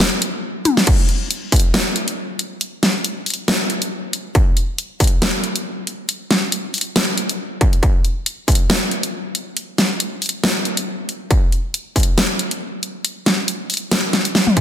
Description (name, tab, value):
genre	dubstep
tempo	138 BPM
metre	4/4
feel	swing 55% on 16ths, half-time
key	none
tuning	none
part	dubstep drum kit	drums	0.0-14.6 s	crash cymbal, hi-hat, snare drum, toms	-18 LUFS	equal	studio reverb
part	electronic kick drum	drums	0.9-1.6, 4.3-8.6, 11.3-14.6 s	none	-15 LUFS	equal	distortion, studio reverb
room	moderate lush hall reverb, RT60 1.9 s, digital ambience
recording	dense, heavily limited modern master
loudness	-17 LUFS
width	side -10 dB against mid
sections	0.9-14.6 A section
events	kick drops out 0.4-0.9; drum fill 0.7, 14.1-14.6; drop 0.9-14.6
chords	none